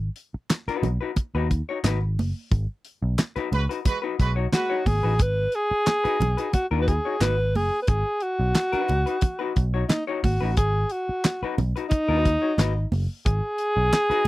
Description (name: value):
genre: funk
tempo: 89 BPM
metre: 4/4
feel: straight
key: G# minor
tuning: A4 = 441 Hz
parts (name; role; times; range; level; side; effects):
- vintage muted picked electric bass; bass; 0.0-14.3 s; F#1 to D#2; -24 LUFS; equal; none
- damped 70s drum kit; drums; 0.2-14.3 s; handclaps, hi-hat, kick drum, snare drum; -22 LUFS; equal; none
- congas; percussion; 0.5-14.3 s; none; -30 LUFS; right 4 dB; none
- vintage hollow-body jazz guitar; accompaniment; 0.7-14.2 s; D#4 to C#5; -29 LUFS; left 7 dB; none
- clear horn section; second line; 3.5-4.8 s; G#3 to B4; -29 LUFS; right 4 dB; none
- warm alto saxophone; melody; 4.5-14.3 s; D#4 to B4; -24 LUFS; equal; none
room: little or no reverb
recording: dry, close 1970s-style studio recording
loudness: -22 LUFS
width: side -18 dB against mid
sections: 0.0-14.3 A section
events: band accent 2.5-5.2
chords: 0.0 G#m7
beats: 0.49 1.17 1.84 | 2.51 3.18 3.85 4.53 | 5.20 5.87 6.54 7.21 | 7.89 8.56 9.23 9.90 | 10.57 11.24 11.92 12.59 | 13.26 13.93